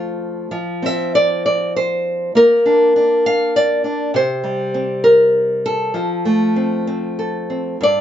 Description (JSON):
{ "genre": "folk, solo fingerstyle acoustic guitar", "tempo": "99 BPM", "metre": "3/4", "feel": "rubato", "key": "unclear", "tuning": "A4 = 441 Hz", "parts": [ { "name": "nylon-string guitar", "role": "solo", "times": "0.0-8.0 s", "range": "G2 to F5", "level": "-14 LUFS", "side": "equal", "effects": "none" } ], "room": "moderate studio ambience, RT60 0.5 s", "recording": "nothing above 7.5 kHz", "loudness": "-14 LUFS", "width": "side -10 dB against mid", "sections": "0.0-7.8 A section", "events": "none", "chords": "0.0 F; 2.4 Bb; 4.1 C5; 6.0 F" }